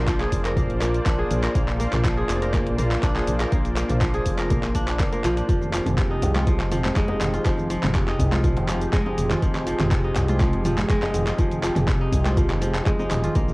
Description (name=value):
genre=afro house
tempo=122 BPM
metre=4/4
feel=straight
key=F dorian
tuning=A4 = 440 Hz
part: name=warm analog pad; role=sustained chords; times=0.0-13.5 s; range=F3 to D5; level=-30 LUFS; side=equal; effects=chorus, sidechain pumping, cassette tape
part: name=kora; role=arpeggios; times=0.0-13.5 s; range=C3 to Bb4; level=-26 LUFS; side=equal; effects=sidechain pumping, cassette tape, analog delay
part: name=round analog bass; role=bass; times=0.0-13.5 s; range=Eb1 to C2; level=-26 LUFS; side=equal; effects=sidechain pumping
part: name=deep house drum kit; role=drums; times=0.1-13.5 s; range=handclaps, hi-hat, shaker, toms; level=-29 LUFS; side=equal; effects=cassette tape
part: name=electronic kick drum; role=drums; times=0.1-13.5 s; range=none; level=-24 LUFS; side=equal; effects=cassette tape
part: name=congas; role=percussion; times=5.6-13.5 s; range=none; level=-31 LUFS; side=right 2 dB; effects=none
part: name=djembe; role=percussion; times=5.9-13.1 s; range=none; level=-31 LUFS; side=left 1 dB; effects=none
room=light reverb, digital ambience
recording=home recording on cassette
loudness=-20 LUFS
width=side -23 dB against mid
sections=0.0-13.5 A section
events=none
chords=0.0 Bb9; 5.5 Fm7